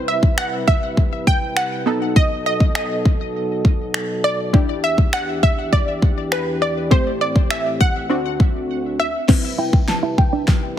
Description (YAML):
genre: dance-pop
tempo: 101 BPM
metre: 4/4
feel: straight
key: unclear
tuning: A4 = 440 Hz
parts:
  - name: wide unison pluck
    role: melody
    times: 0.0-10.8 s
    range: B4 to A5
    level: -22 LUFS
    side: right 1 dB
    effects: low-pass filter, ping-pong delay
  - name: punchy chord stab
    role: accompaniment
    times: 0.0-10.0 s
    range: A3 to B4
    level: -25 LUFS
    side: left 2 dB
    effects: chorus, sidechain pumping, low-pass filter
  - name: mellow French horn section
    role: sustained chords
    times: 0.0-10.8 s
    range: D2 to B4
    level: -26 LUFS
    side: equal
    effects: sidechain pumping, low-pass filter
  - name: pop drum kit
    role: drums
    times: 0.2-10.6 s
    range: crash cymbal, finger snaps, kick drum, snare drum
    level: -16 LUFS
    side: equal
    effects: none
  - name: direct-recorded clean electric guitar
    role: riff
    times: 9.3-10.5 s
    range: C4 to E4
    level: -24 LUFS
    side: right 6 dB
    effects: analog chorus, low-pass filter
room: light reverb, digital ambience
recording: heavily compressed radio sound, multiband compression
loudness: -16 LUFS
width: side -10 dB against mid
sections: 0.0-9.3 A section; 9.3-10.8 B section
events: drums muted 8.7-9.3; build-up 9.3-10.8; drum fill 9.3-10.8; filter sweep 9.3-10.8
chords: 0.0 Cmaj7; 1.9 B7; 4.5 Em7; 6.9 Am7; 8.1 D7; 9.3 Cmaj7